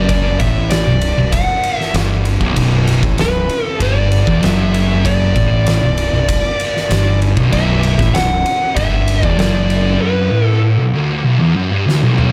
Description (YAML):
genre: stoner and doom metal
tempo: 97 BPM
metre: 4/4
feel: straight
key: B minor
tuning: A4 = 440 Hz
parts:
  - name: fuzz lead guitar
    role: melody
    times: 0.0-10.6 s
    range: B4 to F#5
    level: -22 LUFS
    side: equal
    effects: distortion, analog delay
  - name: thick fuzz guitar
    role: riff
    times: 0.0-12.3 s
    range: B1 to A2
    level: -20 LUFS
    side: equal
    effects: distortion
  - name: thick fuzz guitar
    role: riff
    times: 0.0-12.3 s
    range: B1 to A2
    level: -20 LUFS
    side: equal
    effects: distortion
  - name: fuzz fingered electric bass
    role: bass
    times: 0.0-10.0 s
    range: B0 to A1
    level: -21 LUFS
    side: equal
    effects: overdrive
  - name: oversized low-tuned drum kit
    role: drums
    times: 0.1-12.3 s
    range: kick drum, ride cymbal, snare drum, toms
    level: -22 LUFS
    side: equal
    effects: none
room: small room ambience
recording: none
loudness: -15 LUFS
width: mono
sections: 0.0-12.3 A section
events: drum fill 11.9-12.3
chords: 0.0 Bm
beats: | 0.09 0.71 1.33 1.95 | 2.57 3.19 3.81 4.43 | 5.05 5.67 6.29 6.91 | 7.53 8.15 8.77 9.39 | 10.01 10.63 11.26 11.88